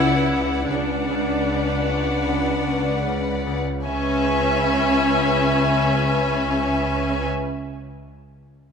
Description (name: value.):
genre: cinematic, suspense film score.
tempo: 76 BPM.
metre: 4/4.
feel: straight.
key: C# phrygian.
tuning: A4 = 440 Hz.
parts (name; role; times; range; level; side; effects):
rich chamber violin section; melody; 0.0-7.3 s; F#5 to G#5; -26 LUFS; equal; none.
rich studio violin section; second line; 0.0-7.3 s; B4 to E5; -26 LUFS; left 3 dB; none.
rich chamber viola section; accompaniment; 0.0-7.3 s; C#4 to E4; -24 LUFS; equal; none.
Celtic harp; riff; 0.0-6.6 s; C#3 to C#4; -29 LUFS; left 7 dB; none.
clear symphonic double bass section; bass; 0.0-7.3 s; C#2; -29 LUFS; right 2 dB; none.
warm chamber cello section; bass; 0.0-7.3 s; C#3; -28 LUFS; right 2 dB; none.
bowed-like drone; drone; 0.0-7.3 s; C#2; -29 LUFS; left 2 dB; built-in reverb.
concert harp; texture; 0.0-6.2 s; G#5 to B5; -43 LUFS; left 3 dB; none.
room: moderate scoring stage reverb, RT60 1.9 s.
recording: minimal, uncompressed stereo recording.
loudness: -19 LUFS.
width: side -6 dB against mid.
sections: 0.0-3.9 A section; 3.9-7.0 B section.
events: none.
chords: 0.0 Bm/C#; 3.9 C#m7.